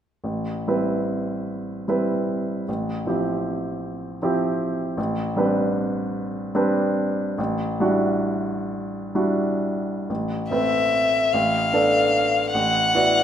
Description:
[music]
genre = classical, impressionist duo for violin and grand piano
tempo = 40-53 BPM (dotted quarters)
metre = 6/8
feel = rubato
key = A minor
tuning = A4 = 440 Hz
[part]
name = clear baby grand piano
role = accompaniment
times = 0.2-13.2 s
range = A1 to D5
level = -22 LUFS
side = right 1 dB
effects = none
[part]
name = rich violin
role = melody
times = 10.5-13.2 s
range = E5 to F#5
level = -19 LUFS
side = left 2 dB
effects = none
[sound]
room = wet recital hall reverb, RT60 1.5 s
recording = none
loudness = -21 LUFS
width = side -9 dB against mid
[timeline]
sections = 0.2-10.1 A section; 10.1-13.2 B section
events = none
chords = 0.2 Am9; 2.7 Fmaj9/A; 5.0 Am11; 7.4 Em9/A; 10.1 Amadd9; 11.3 Dm6/A; 12.5 E9sus4/A

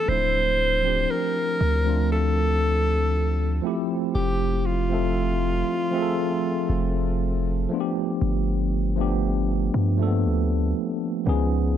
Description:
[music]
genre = contemporary R&B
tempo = 59 BPM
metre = 4/4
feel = straight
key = unclear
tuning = A4 = 440 Hz
[part]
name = breathy alto saxophone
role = melody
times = 0.0-7.7 s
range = F4 to C5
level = -25 LUFS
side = equal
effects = tape echo
[part]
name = mellow tine electric piano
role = accompaniment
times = 0.0-11.8 s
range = D#3 to E5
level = -25 LUFS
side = equal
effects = slow stereo tremolo
[part]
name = long sustained 808-style bass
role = bass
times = 0.1-11.8 s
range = D1 to G2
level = -24 LUFS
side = equal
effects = none
[sound]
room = light reverb, small room ambience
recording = none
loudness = -21 LUFS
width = side -10 dB against mid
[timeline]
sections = 0.1-11.8 A section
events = none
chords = 0.1 Dm7; 3.6 Fmaj7; 7.7 G7; 11.3 C#9

